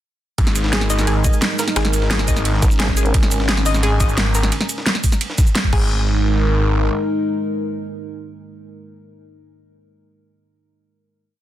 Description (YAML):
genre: dark technical drum and bass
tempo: 174 BPM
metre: 4/4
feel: straight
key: unclear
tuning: A4 = 439 Hz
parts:
  - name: dark analog pad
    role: sustained chords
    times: 0.6-8.8 s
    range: G#3 to A#4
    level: -24 LUFS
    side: equal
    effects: wide subtle chorus, sidechain pumping
  - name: snarling distorted saw bass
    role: bass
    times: 0.4-6.9 s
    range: G#1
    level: -18 LUFS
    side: equal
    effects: distortion, tube saturation
  - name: breakbeat sampler-style drum kit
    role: drums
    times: 0.4-5.6 s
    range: ride cymbal, snare drum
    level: -29 LUFS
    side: right 1 dB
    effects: high-pass filter on cymbals, small room ambience, high-pass filter on snare
  - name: dubstep drum kit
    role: drums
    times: 0.4-5.8 s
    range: cabasa, crash cymbal, hi-hat, snare drum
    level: -22 LUFS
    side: equal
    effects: small room ambience
  - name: electronic kick drum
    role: drums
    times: 0.4-5.8 s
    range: none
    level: -17 LUFS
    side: equal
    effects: small room ambience
  - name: analog pluck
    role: arpeggios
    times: 0.7-6.0 s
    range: G#4 to D#5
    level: -27 LUFS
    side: left 2 dB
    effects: chorus, sidechain pumping, dub echo
  - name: vowel-sweep wobble bass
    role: bass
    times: 2.6-3.1 s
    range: G#1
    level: -19 LUFS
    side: equal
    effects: chorus, tube saturation
room: light reverb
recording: dense, heavily limited modern master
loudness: -15 LUFS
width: side -13 dB against mid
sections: 0.4-5.9 drop; 5.9-8.7 final hit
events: drop 0.4-5.9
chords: 0.4 G#sus2